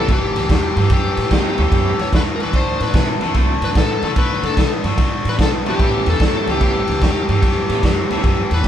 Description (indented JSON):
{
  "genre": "electric blues shuffle",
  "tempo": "147 BPM",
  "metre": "4/4",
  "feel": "swing 66% on 8ths",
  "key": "A mixolydian",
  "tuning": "A4 = 440 Hz",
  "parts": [
    { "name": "smooth overdriven lead guitar", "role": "melody", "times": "0.0-8.7 s", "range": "G4 to C#5", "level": "-22 LUFS", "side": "left 4 dB", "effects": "none" },
    { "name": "bright tonewheel organ", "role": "accompaniment", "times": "0.0-8.2 s", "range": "G#3 to G4", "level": "-25 LUFS", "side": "right 5 dB", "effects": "overdrive, chorus vibrato, slow rotary speaker" },
    { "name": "overdriven electric guitar", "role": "riff", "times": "0.0-8.6 s", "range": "A2 to B3", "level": "-22 LUFS", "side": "left 3 dB", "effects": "none" },
    { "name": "upright bass", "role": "bass", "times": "0.0-8.7 s", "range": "F#1 to D3", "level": "-22 LUFS", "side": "right 1 dB", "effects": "none" },
    { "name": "raw garage drum kit", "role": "drums", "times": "0.1-8.7 s", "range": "kick drum, ride cymbal, snare drum", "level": "-18 LUFS", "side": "right 1 dB", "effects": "none" }
  ],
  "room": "light reverb",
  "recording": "band playing live in one room",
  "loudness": "-14 LUFS",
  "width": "side -10 dB against mid",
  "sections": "0.0-8.7 A section",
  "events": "none",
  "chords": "0.0 A7; 2.5 D7; 5.8 A7"
}